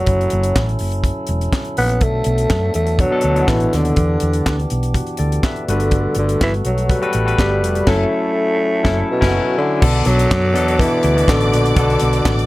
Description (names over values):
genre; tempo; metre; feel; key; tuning
disco; 123 BPM; 4/4; straight; B minor; A4 = 440 Hz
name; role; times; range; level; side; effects
growling tenor saxophone; melody; 0.0-12.5 s; B2 to B3; -19 LUFS; equal; none
percussive tonewheel organ; sustained chords; 0.0-9.8 s; E3 to A4; -27 LUFS; right 1 dB; overdrive, stopped rotary speaker
hollow-body short-scale fingered electric bass; bass; 0.0-12.4 s; E1 to F#2; -18 LUFS; equal; none
tight funk drum kit; drums; 0.1-12.5 s; crash cymbal, handclaps, hi-hat, kick drum, snare drum; -20 LUFS; equal; none
barky tine electric piano; accompaniment; 3.0-12.5 s; B2 to E5; -21 LUFS; left 3 dB; overdrive
rich studio string section; second line; 9.8-12.5 s; D5 to D6; -25 LUFS; right 2 dB; none
room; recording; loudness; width
light reverb; none; -14 LUFS; side -18 dB against mid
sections
0.0-9.8 A section; 9.8-12.5 B section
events
band accent 7.9-9.8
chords
0.1 F#m7; 2.0 Bm7; 4.0 Em7; 5.7 Gmaj9; 7.9 F#m7; 9.8 Bm7